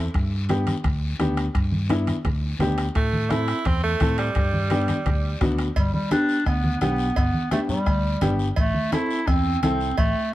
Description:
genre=latin, cumbia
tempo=171 BPM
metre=4/4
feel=straight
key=G major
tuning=A4 = 440 Hz
part: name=clear upright piano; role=accompaniment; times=0.0-9.9 s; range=B3 to A4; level=-27 LUFS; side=left 2 dB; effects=none
part: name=fingered electric bass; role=bass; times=0.0-10.1 s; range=G1 to A2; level=-25 LUFS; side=equal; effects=none
part: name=bombo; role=percussion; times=0.1-10.2 s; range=none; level=-25 LUFS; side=equal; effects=none
part: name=congas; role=percussion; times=0.1-10.2 s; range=none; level=-29 LUFS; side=right 1 dB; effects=none
part: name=guiro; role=percussion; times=0.1-10.3 s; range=none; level=-40 LUFS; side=left 5 dB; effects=none
part: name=timbales and cowbell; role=percussion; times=0.1-10.2 s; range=none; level=-36 LUFS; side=right 5 dB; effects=none
part: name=edgy tenor saxophone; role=second line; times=3.0-5.4 s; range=G3 to E4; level=-27 LUFS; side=right 4 dB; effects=none
part: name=warm clarinet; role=melody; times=5.8-10.3 s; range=G3 to E4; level=-24 LUFS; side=equal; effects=none
room=light reverb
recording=dark, warm production, vinyl crackle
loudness=-20 LUFS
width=side -15 dB against mid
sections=0.0-5.8 A section; 5.8-10.3 B section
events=tenor saxophone solo 0.0-5.8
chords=0.1 G; 3.0 Am; 4.4 G; 8.6 Am

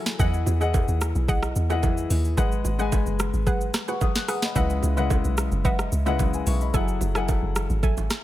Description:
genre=amapiano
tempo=110 BPM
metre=4/4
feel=straight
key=C# minor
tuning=A4 = 440 Hz
part: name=dark grand piano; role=accompaniment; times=0.0-8.2 s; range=C#3 to F#6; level=-29 LUFS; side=left 7 dB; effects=none
part: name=soft round pluck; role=stabs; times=0.0-8.2 s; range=G#4 to G#5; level=-32 LUFS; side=right 2 dB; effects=chorus, digital delay
part: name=smooth R&B drum kit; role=drums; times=0.1-8.2 s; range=hi-hat, kick drum, rim click, shaker, snare drum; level=-26 LUFS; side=equal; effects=none
part: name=deep log drum bass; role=bass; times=0.2-8.1 s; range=F#1 to E2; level=-25 LUFS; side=equal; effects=none
part: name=congas and bongos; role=percussion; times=0.2-8.1 s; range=none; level=-35 LUFS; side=right 11 dB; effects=none
room=digital ambience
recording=none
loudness=-21 LUFS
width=side -14 dB against mid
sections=0.0-8.2 A section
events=none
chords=0.2 Emaj9; 2.4 G#m7; 4.6 C#m11; 6.7 F#m9

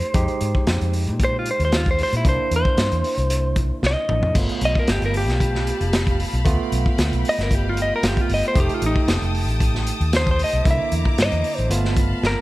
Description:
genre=straight-eighth soul blues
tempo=114 BPM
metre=4/4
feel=swing 53% on 16ths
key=unclear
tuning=A4 = 440 Hz
part: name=direct-recorded clean electric guitar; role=melody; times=0.0-12.4 s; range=Eb4 to E5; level=-23 LUFS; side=equal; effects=spring reverb
part: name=barky tine electric piano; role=accompaniment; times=0.0-12.4 s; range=D3 to G4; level=-28 LUFS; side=right 4 dB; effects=auto-pan
part: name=crunchy breakbeat drum kit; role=drums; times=0.0-12.4 s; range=crash cymbal, hi-hat, kick drum, snare drum, toms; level=-22 LUFS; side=equal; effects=none
part: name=vintage muted fingered electric bass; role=bass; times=0.1-12.3 s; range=F1 to Bb2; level=-22 LUFS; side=equal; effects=none
part: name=clear studio string section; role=sustained chords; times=4.3-12.4 s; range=E4 to Eb6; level=-31 LUFS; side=left 1 dB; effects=none
room=small room ambience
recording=none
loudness=-18 LUFS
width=side -18 dB against mid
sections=0.0-12.4 A section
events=clean electric guitar solo 0.0-12.4; drum fill 3.8-4.4, 12.2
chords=0.2 Fm7; 2.3 C9; 4.4 G9; 8.6 F9; 10.7 C9; 11.7 G9

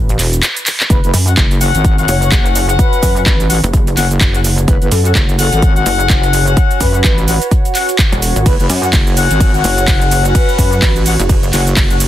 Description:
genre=bass house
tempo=127 BPM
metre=4/4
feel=swing 58% on 16ths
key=F# minor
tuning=A4 = 437 Hz
part: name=pulsing pluck wobble bass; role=bass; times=0.0-12.1 s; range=E1 to F#2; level=-14 LUFS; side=equal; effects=chorus, tube saturation, sidechain pumping
part: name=garage drum kit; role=drums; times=0.1-12.1 s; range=cabasa, handclaps, hi-hat, ride cymbal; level=-17 LUFS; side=right 1 dB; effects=overdrive
part: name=breathy flute-like synth lead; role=melody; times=0.9-11.0 s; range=A4 to C#5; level=-24 LUFS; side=right 1 dB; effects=analog chorus, dub echo
part: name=wobble bass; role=bass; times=0.9-11.8 s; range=F#1 to A1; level=-15 LUFS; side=equal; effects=chorus, tube saturation, sidechain pumping
part: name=electronic kick drum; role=drums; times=0.9-11.9 s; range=none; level=-13 LUFS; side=equal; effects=none
part: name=warbly tape-like pad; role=texture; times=2.4-12.1 s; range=F#4 to F#5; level=-23 LUFS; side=right 2 dB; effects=chorus, built-in reverb, phaser, sidechain pumping
part: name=mellow horn section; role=stabs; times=1.3-12.0 s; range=C#4 to F#5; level=-19 LUFS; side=left 8 dB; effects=vintage 12-bit sampler grit, sidechain pumping, dub echo
room=little or no reverb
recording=dense, heavily limited modern master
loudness=-10 LUFS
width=side -12 dB against mid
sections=0.0-12.1 A section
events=drum fill 0.7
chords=0.0 F#5

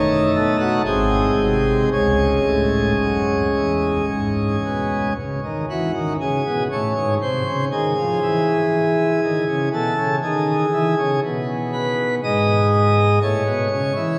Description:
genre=classical, chorale-style piece for pipe organ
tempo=55-61 BPM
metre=3/4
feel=rubato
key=C# minor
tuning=A4 = 436 Hz
part: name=pipe organ, plenum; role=solo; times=0.0-14.2 s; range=G#1 to D#5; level=-20 LUFS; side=equal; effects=none
room=wet cathedral reverb, RT60 6.4 s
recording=heard from further back in the room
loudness=-20 LUFS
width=mono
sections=0.0-5.2 A section; 5.2-14.2 B section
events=none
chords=0.0 D#m7b5; 0.9 G#; 1.9 C#m; 7.2 C#maj9/B#; 8.2 C#m; 11.2 G#m/B; 13.2 Aadd9

